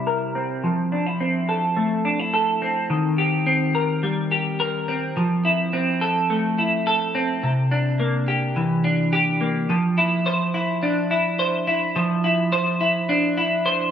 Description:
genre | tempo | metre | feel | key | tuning
dream pop | 106 BPM | 4/4 | straight | unclear | A4 = 440 Hz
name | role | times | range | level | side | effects
semi-hollow electric guitar | solo | 0.0-13.9 s | C3 to C5 | -19 LUFS | equal | analog chorus, low-pass filter, tape echo
room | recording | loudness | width
wet scoring stage reverb, RT60 1.6 s | none | -19 LUFS | side -9 dB against mid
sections
0.0-9.7 A section; 9.7-13.9 B section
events
none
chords
0.0 C7; 0.6 Fmaj7; 2.9 Cm7/Eb; 5.2 Fmaj7; 7.4 C9; 9.7 Cadd9/F

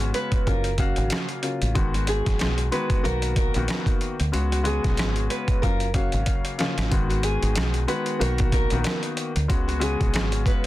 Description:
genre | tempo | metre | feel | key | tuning
hip hop, boom-bap hip-hop | 93 BPM | 4/4 | swing 56% on 16ths | G# dorian | A4 = 440 Hz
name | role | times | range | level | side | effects
nylon-string guitar | melody | 0.0-10.7 s | F#4 to B4 | -30 LUFS | right 2 dB | high-pass filter, low-pass filter, tape echo
warm grand piano | accompaniment | 0.0-10.7 s | C#3 to E#5 | -28 LUFS | left 4 dB | cassette tape, high-pass filter, low-pass filter
deep dub fingered electric bass | bass | 0.0-10.4 s | F#1 to D2 | -25 LUFS | equal | none
boom bap sampler-style drum kit | drums | 0.0-10.7 s | hi-hat, kick drum, rim click, snare drum | -25 LUFS | equal | none
room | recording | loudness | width
little or no reverb | dense, heavily limited modern master | -21 LUFS | side -16 dB against mid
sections
0.0-6.9 A section; 6.9-10.7 B section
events
drum fill 6.3-6.9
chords
0.5 F#maj7; 1.8 G#m7; 3.0 Bmaj7; 4.3 C#7sus4; 5.6 F#maj7; 6.9 G#m7; 8.2 Bmaj7; 9.5 C#7sus4

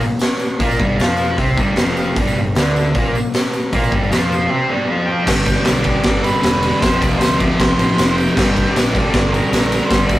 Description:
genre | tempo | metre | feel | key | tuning
garage rock duo or trio | 155 BPM | 4/4 | straight | unclear | A4 = 440 Hz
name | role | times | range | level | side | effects
tambourine | percussion | 0.0-10.2 s | none | -37 LUFS | right 4 dB | none
raw garage drum kit | drums | 0.2-10.2 s | crash cymbal, hi-hat, kick drum, ride cymbal, snare drum | -17 LUFS | equal | none
thick fuzz guitar | riff | 0.6-10.2 s | F2 to F4 | -18 LUFS | equal | distortion
growling picked electric bass | bass | 0.6-10.2 s | E1 to F2 | -23 LUFS | equal | overdrive
octave-fuzz lead guitar | melody | 5.1-10.2 s | Bb4 to G5 | -22 LUFS | right 1 dB | distortion
room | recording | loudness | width
moderate studio ambience, RT60 0.5 s | rough rehearsal-room recording, tube saturation | -14 LUFS | side -15 dB against mid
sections
0.0-5.3 A section; 5.3-10.2 B section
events
none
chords
0.0 G5; 5.3 G; 6.8 F5; 8.4 Gm

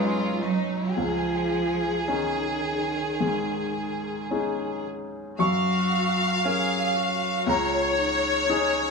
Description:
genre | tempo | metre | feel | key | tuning
neoclassical piano and strings | 54-59 BPM | 4/4 | rubato | F# major | A4 = 440 Hz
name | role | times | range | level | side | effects
rich chamber violin section | melody | 0.0-8.9 s | D#4 to E#5 | -26 LUFS | equal | none
clear cello | second line | 0.0-8.9 s | D#3 to G#4 | -29 LUFS | right 2 dB | none
clear baby grand piano | accompaniment | 0.0-8.9 s | C#2 to C#6 | -27 LUFS | left 2 dB | none
room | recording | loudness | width
light reverb | small room ambience | -23 LUFS | side -4 dB against mid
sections
0.0-5.4 A section; 5.4-8.9 A section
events
none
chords
0.0 Badd9; 1.0 C#sus2; 5.4 F#maj7; 7.5 C#sus2

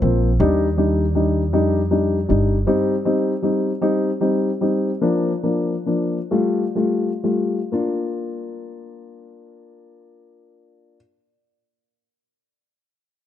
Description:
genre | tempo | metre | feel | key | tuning
pop | 40-53 BPM (dotted quarters) | 6/8 | straight | Bb major | A4 = 441 Hz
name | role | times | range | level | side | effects
dark upright piano | accompaniment | 0.0-11.0 s | F3 to F4 | -19 LUFS | left 2 dB | none
upright bass | bass | 0.0-2.6 s | G1 to F2 | -21 LUFS | right 1 dB | none
room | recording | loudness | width
light reverb, small room ambience | dark, warm production | -18 LUFS | side -11 dB against mid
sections
0.0-7.7 A section; 7.7-10.7 B section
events
slowing down 2.7-7.7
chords
0.4 Ebmaj7; 2.7 Cm; 5.0 Bb/F; 6.3 Fadd9; 7.7 Bb

